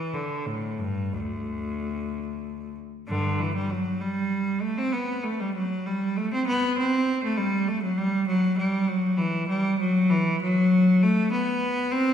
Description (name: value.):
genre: classical, baroque-style suite movement for unaccompanied cello.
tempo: 65 BPM (dotted quarters).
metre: 12/8.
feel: rubato.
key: G major.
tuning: A4 = 440 Hz.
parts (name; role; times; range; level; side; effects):
bright cello; solo; 0.0-12.1 s; D2 to C4; -23 LUFS; equal; none.
room: wet scoring stage reverb, RT60 1.5 s.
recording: minimal, uncompressed stereo recording.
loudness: -23 LUFS.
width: side -9 dB against mid.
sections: 0.0-3.1 A section; 3.1-12.1 A section.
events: none.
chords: none.